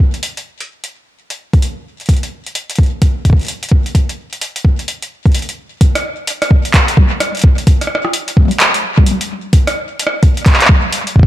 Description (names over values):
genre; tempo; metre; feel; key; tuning
IDM; 129 BPM; 4/4; swing 62% on 16ths; none; none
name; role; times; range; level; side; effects
electronic kick drum; drums; 0.0-11.3 s; none; -10 LUFS; equal; none
booming analog drum machine; drums; 0.1-11.1 s; handclaps, hi-hat, rim click, toms; -16 LUFS; equal; digital delay
room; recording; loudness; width
little or no reverb; blown-out, overdriven recording, overdrive; -11 LUFS; side -14 dB against mid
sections
0.0-5.8 A section; 5.8-11.3 B section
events
none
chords
none